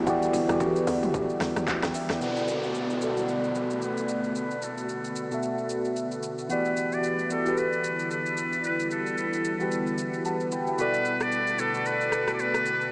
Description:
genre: amapiano.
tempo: 112 BPM.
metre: 4/4.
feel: swing 58% on 16ths.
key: E minor.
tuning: A4 = 444 Hz.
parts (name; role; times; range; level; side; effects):
mellow tine electric piano; accompaniment; 0.0-12.9 s; B2 to B5; -28 LUFS; equal; phaser, low-pass filter.
ethereal airy pad; sustained chords; 0.0-12.9 s; D3 to F#4; -34 LUFS; equal; ensemble chorus, built-in reverb, phaser, sidechain pumping, low-pass filter.
tight log drum bass; bass; 0.0-2.2 s; D2 to E2; -33 LUFS; equal; none.
deep house drum kit; drums; 0.1-12.9 s; handclaps, hi-hat, kick drum, rim click, shaker, snare drum, toms; -35 LUFS; equal; overdrive.
congas and bongos; percussion; 0.1-2.1 s; none; -41 LUFS; equal; none.
trumpet with metal mute; melody; 2.2-12.9 s; A4 to D5; -29 LUFS; equal; low-pass filter, diffuse ambient delay.
downlifter; sound effects; 2.2-6.5 s; none; -38 LUFS; equal; none.
room: wet huge ambient reverb, RT60 8.7 s.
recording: dreamy mix soaked in reverb, small speaker sound.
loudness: -25 LUFS.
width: side -32 dB against mid.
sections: 0.0-2.2 A section; 2.2-12.9 B section.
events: drop 0.0-2.2; filter sweep 2.2-12.9.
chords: 0.0 Em7; 2.2 Bm7; 6.5 Em7; 10.8 Bm7.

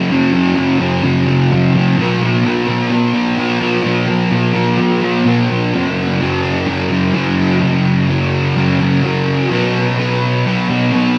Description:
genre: rock.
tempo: 128 BPM.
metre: 4/4.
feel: straight.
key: unclear.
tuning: A4 = 439 Hz.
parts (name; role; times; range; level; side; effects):
fuzz guitar; solo; 0.0-11.2 s; F#2 to B3; -14 LUFS; equal; distortion, lush chorus, diffuse ambient delay.
room: wet plate reverb, RT60 3.4 s.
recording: dreamy mix soaked in reverb.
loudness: -15 LUFS.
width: mono.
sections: 0.0-5.7 A section; 5.7-11.2 B section.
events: none.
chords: 0.0 F#5; 2.0 B5; 5.7 F#5; 9.5 B5.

